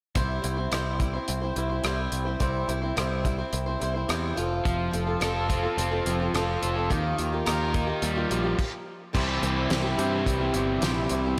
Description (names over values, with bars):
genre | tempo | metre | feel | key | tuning
folk rock and heartland rock | 107 BPM | 4/4 | straight | C mixolydian | A4 = 439 Hz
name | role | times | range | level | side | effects
picked swing-style acoustic guitar | accompaniment | 0.2-11.4 s | C3 to C5 | -32 LUFS | equal | slapback echo
picked electric bass | bass | 0.2-11.3 s | F1 to G2 | -32 LUFS | equal | none
damped 70s drum kit | drums | 0.2-11.2 s | crash cymbal, hi-hat, kick drum, rim click, snare drum | -33 LUFS | equal | none
crunchy overdriven guitar | riff | 4.7-11.4 s | C3 to Bb4 | -31 LUFS | equal | slapback echo
room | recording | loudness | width
moderate lush hall reverb, RT60 2.7 s | big arena sound | -27 LUFS | mono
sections
0.2-9.1 A section; 9.1-11.4 B section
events
stop 8.6-9.1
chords
0.2 C; 4.4 F; 6.9 Ebadd9; 9.1 C